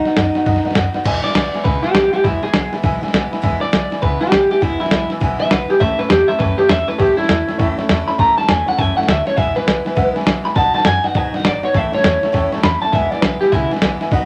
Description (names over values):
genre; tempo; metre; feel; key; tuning
rockabilly; 202 BPM; 4/4; swing 63% on 8ths; E major; A4 = 440 Hz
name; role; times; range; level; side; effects
electric guitar through a small old amp; melody; 0.0-13.7 s; D#4 to B5; -19 LUFS; equal; none
dark upright piano; accompaniment; 0.0-14.2 s; B4 to B5; -27 LUFS; equal; none
picked steel-string acoustic guitar; accompaniment; 0.0-14.3 s; E2 to F#4; -28 LUFS; equal; none
upright bass; bass; 0.1-14.3 s; E1 to G#2; -27 LUFS; equal; none
lo-fi sampler-style drum kit; drums; 0.1-14.2 s; crash cymbal, hi-hat, kick drum, snare drum; -21 LUFS; equal; none
room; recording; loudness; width
moderate club reverb, RT60 0.6 s; none; -16 LUFS; mono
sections
0.0-1.1 A section; 1.1-14.3 B section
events
clean electric guitar solo 1.1-14.3; upright piano fill 2.8-3.4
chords
0.0 B; 1.1 E; 5.8 A; 9.4 E; 10.6 B; 11.8 A; 12.9 E